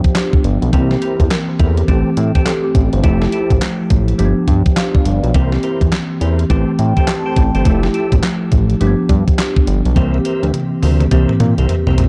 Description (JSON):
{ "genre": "R&B, new jack swing", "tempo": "104 BPM", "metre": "4/4", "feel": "swing 62% on 16ths", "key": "unclear", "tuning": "A4 = 439 Hz", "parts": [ { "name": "bell-like tine electric piano", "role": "accompaniment", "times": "0.0-12.1 s", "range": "E3 to A5", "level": "-20 LUFS", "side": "equal", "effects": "tube saturation, phaser" }, { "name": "crisp 8-bit digital drum machine", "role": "drums", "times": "0.0-12.1 s", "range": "handclaps, hi-hat, kick drum, snare drum, toms", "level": "-18 LUFS", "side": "equal", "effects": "none" }, { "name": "fat analog bass", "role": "bass", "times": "0.4-12.1 s", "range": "F1 to Bb2", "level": "-18 LUFS", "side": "equal", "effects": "none" }, { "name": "overdriven tonewheel organ", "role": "stabs", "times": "0.7-12.1 s", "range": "C4 to E5", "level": "-30 LUFS", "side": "equal", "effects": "chorus vibrato, stopped rotary speaker, tape echo" } ], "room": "little or no reverb", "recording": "dark, warm production", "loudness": "-15 LUFS", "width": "mono", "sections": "0.0-12.1 A section", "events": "tine electric piano fill 6.5-7.7; drum fill 10.0-12.1", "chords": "0.0 G7; 0.7 C7; 1.9 Am7; 3.0 Fmaj9; 4.2 G7; 5.3 C7; 6.5 Am7; 7.7 Fmaj9; 8.8 G7; 10.0 C7", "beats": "0.15 | 0.73 1.31 1.88 2.46 | 3.04 3.61 4.19 4.77 | 5.34 5.92 6.50 7.08 | 7.65 8.23 8.81 9.38 | 9.96 10.54 11.11 11.69" }